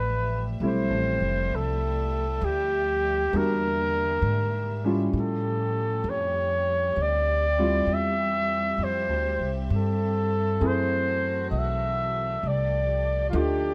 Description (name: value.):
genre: jazz ballad.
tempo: 66 BPM.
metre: 4/4.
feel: swing 68% on 8ths.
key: unclear.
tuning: A4 = 445 Hz.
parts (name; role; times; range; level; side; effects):
dark trumpet; melody; 0.0-13.7 s; F4 to E5; -28 LUFS; equal; none.
warm chamber string section; sustained chords; 0.0-13.7 s; D3 to E5; -39 LUFS; equal; none.
upright bass; bass; 0.0-13.7 s; F1 to A2; -31 LUFS; equal; none.
clear concert grand piano; accompaniment; 0.6-13.7 s; G3 to Ab4; -33 LUFS; equal; none.
room: light reverb.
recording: none.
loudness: -26 LUFS.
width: mono.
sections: 0.0-13.7 A section.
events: none.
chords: 0.0 Fmaj9; 3.3 Em7b5; 5.1 A7b13; 7.0 Dm11; 10.6 F#m7b5; 12.4 F13.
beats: 0.60 1.51 2.42 | 3.32 4.23 5.14 6.04 | 6.96 7.87 8.78 9.69 | 10.60 11.50 12.41 13.32.